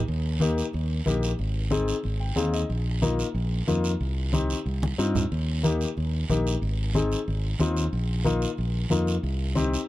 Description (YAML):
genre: latin, cumbia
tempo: 184 BPM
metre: 4/4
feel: straight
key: Eb major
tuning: A4 = 445 Hz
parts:
  - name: fingered electric bass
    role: bass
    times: 0.1-9.8 s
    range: Ab1 to G2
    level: -26 LUFS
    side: equal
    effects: none
  - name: congas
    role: percussion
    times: 0.1-9.7 s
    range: none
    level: -29 LUFS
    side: equal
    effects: none
  - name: guiro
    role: percussion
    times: 0.1-9.9 s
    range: none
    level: -38 LUFS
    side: right 5 dB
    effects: none
  - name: warm upright piano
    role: accompaniment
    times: 0.4-9.8 s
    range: Bb3 to G5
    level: -29 LUFS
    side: left 4 dB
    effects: none
room: light reverb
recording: dark, warm production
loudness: -24 LUFS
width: side -16 dB against mid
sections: 0.1-9.9 A section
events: upright piano fill 2.0-2.7; drum fill 4.8-5.3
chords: 0.1 Eb; 1.4 Ab; 2.7 Bbsus4; 4.0 Cm; 5.3 Eb; 6.6 Ab; 7.9 Bbsus4; 9.2 Cm